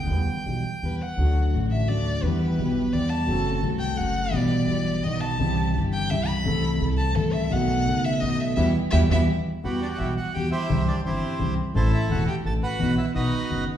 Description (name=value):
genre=tango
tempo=170 BPM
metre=3/4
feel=rubato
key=E minor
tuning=A4 = 440 Hz
part: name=bandoneon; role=melody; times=0.0-1.0, 9.6-13.6 s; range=E4 to A5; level=-30 LUFS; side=right 2 dB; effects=none
part: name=dark grand piano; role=accompaniment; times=0.0-13.7 s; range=E1 to A4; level=-25 LUFS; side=left 1 dB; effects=none
part: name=upright bass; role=bass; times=0.0-13.7 s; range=E1 to E2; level=-27 LUFS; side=right 1 dB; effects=none
part: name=warm violin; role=second line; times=0.9-13.6 s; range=B3 to B5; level=-30 LUFS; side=left 2 dB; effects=none
part: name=warm symphonic string section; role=stabs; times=1.2-9.2 s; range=A3 to A4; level=-35 LUFS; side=right 2 dB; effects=none
room=wet large studio reverb, RT60 1.2 s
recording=heard from further back in the room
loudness=-22 LUFS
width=side -10 dB against mid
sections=0.0-1.2 A section; 1.2-9.6 B section; 9.6-13.8 A section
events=violin solo 1.2-9.6; band accent 8.6-9.6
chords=0.1 Em; 1.2 D; 2.2 Em; 3.3 F#dim; 4.3 Em/B; 5.0 B; 5.4 C; 6.5 Am/C; 7.5 B7; 8.6 Em; 9.6 Emadd9; 10.7 C; 11.7 Am; 12.8 Bsus4; 13.1 B